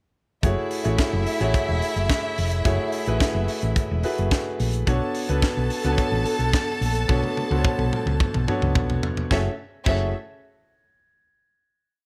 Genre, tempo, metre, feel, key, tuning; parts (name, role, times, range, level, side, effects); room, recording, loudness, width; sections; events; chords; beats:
disco; 108 BPM; 4/4; straight; F# minor; A4 = 440 Hz
warm studio violin section; second line; 0.4-10.1 s; C#4 to A5; -32 LUFS; equal
clear concert grand piano; accompaniment; 0.4-10.1 s; A3 to C#5; -29 LUFS; equal
hollow-body short-scale fingered electric bass; bass; 0.4-10.1 s; E1 to C#2; -27 LUFS; equal
tight funk drum kit; drums; 0.4-10.0 s; crash cymbal, hi-hat, kick drum, snare drum, toms; -28 LUFS; equal
light reverb, small room ambience; -23 LUFS; mono
0.4-9.3 groove; 9.3-11.5 final chord
drum fill 7.1-9.3
0.4 F#m7; 4.9 Bm7; 9.3 F#m7
| 0.44 0.99 1.54 2.10 | 2.65 3.21 3.76 4.32 | 4.87 5.43 5.98 6.54 | 7.09 7.65 8.20 8.76 | 9.31 9.86